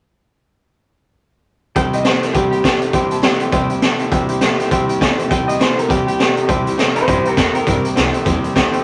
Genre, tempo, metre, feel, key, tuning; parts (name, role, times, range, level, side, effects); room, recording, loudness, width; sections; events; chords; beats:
rockabilly; 203 BPM; 4/4; swing 59% on 8ths; C mixolydian; A4 = 436 Hz
electric guitar through a small old amp; melody; 1.8-7.8 s; E4 to G5; -22 LUFS; equal
clear upright piano; accompaniment; 1.8-8.8 s; C5 to Bb5; -26 LUFS; equal
picked steel-string acoustic guitar; accompaniment; 1.8-8.8 s; C3 to G4; -29 LUFS; equal
electric guitar through a small old amp; riff; 1.8-8.8 s; C3 to A3; -23 LUFS; equal
raw garage drum kit; drums; 1.8-8.8 s; hi-hat, kick drum, snare drum; -19 LUFS; equal
upright bass; bass; 6.5-8.8 s; C2 to C3; -28 LUFS; equal
moderate small room reverb, RT60 0.6 s; -16 LUFS; mono
1.8-6.5 A section; 6.5-8.8 B section
1.8 C7
| 1.76 2.06 2.35 2.65 | 2.94 3.24 3.54 3.83 | 4.13 4.42 4.72 5.01 | 5.31 5.60 5.90 6.20 | 6.49 6.79 7.08 7.38 | 7.67 7.97 8.26 8.56